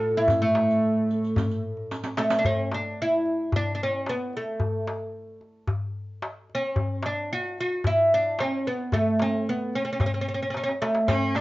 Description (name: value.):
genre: Arabic maqam ensemble.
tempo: 111 BPM.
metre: 4/4.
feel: straight.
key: D maqam rast.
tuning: A4 = 442 Hz.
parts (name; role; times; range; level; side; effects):
oud; melody; 0.0-11.4 s; A3 to F#4-50c; -24 LUFS; equal; none.
dark double bass; drone; 0.0-2.5 s; A2; -34 LUFS; equal; none.
darbuka; percussion; 0.3-11.4 s; none; -28 LUFS; left 1 dB; none.
riq; percussion; 0.3-2.4, 11.1-11.4 s; none; -33 LUFS; right 3 dB; none.
bright cello; second line; 11.1-11.4 s; C#4-49c to D4; -27 LUFS; equal; none.
room: moderate studio reverb, RT60 0.6 s.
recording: worn, warbling old tape, cassette tape, warbly pitch drift, nothing above 7.5 kHz.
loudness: -23 LUFS.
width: side -18 dB against mid.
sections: 0.0-2.4 A section; 2.4-11.4 B section.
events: drum fill 1.9-2.4, 10.5-11.1.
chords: none.